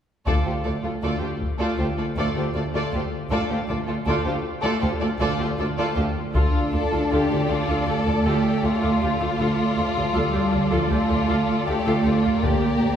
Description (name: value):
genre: cinematic, epic orchestral film score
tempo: 79 BPM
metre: 4/4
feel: straight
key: D minor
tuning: A4 = 439 Hz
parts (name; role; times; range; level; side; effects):
- warm symphonic violin section; second line; 0.3-13.0 s; F4 to D5; -28 LUFS; left 2 dB; none
- rich symphonic viola section; accompaniment; 0.3-12.9 s; A3 to A4; -28 LUFS; equal; none
- dark symphonic cello section; bass; 0.3-13.0 s; D2 to D4; -25 LUFS; right 2 dB; none
- rich symphonic double bass section; bass; 0.3-12.9 s; D2; -27 LUFS; right 2 dB; none
- taiko ensemble; drums; 0.3-1.8, 6.4-7.8, 12.4-13.0 s; none; -25 LUFS; left 1 dB; none
- warm chamber violin section; melody; 6.3-13.0 s; F4 to A4; -27 LUFS; left 4 dB; none
room: wet scoring stage reverb, RT60 2.0 s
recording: heard from further back in the room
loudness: -20 LUFS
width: side -9 dB against mid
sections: 0.3-6.3 A section; 6.3-13.0 B section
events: none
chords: 0.3 Dm; 12.4 Gm/D